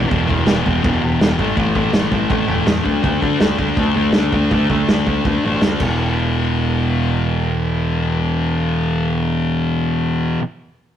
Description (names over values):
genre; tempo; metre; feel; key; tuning
garage rock duo or trio; 164 BPM; 4/4; straight; unclear; A4 = 437 Hz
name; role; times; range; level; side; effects
fuzz guitar; riff; 0.0-10.4 s; E2 to D4; -18 LUFS; left 1 dB; distortion
growling picked electric bass; bass; 0.0-10.3 s; E1 to D3; -22 LUFS; right 1 dB; overdrive
crunchy breakbeat drum kit; drums; 0.1-5.9 s; crash cymbal, kick drum, snare drum, toms; -20 LUFS; right 1 dB; none
room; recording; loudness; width
light reverb; rough rehearsal-room recording, tube saturation; -15 LUFS; side -10 dB against mid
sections
0.1-6.0 A section; 6.0-8.9 B section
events
none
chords
0.1 E5; 1.4 A5; 2.9 D5; 5.8 E5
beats
| 0.11 0.48 0.84 1.21 | 1.58 1.94 2.31 2.68 | 3.04 3.41 3.78 4.15 | 4.51 4.88 5.25 5.61 | 5.98 6.35 6.71 7.08 | 7.45 7.81 8.18 8.55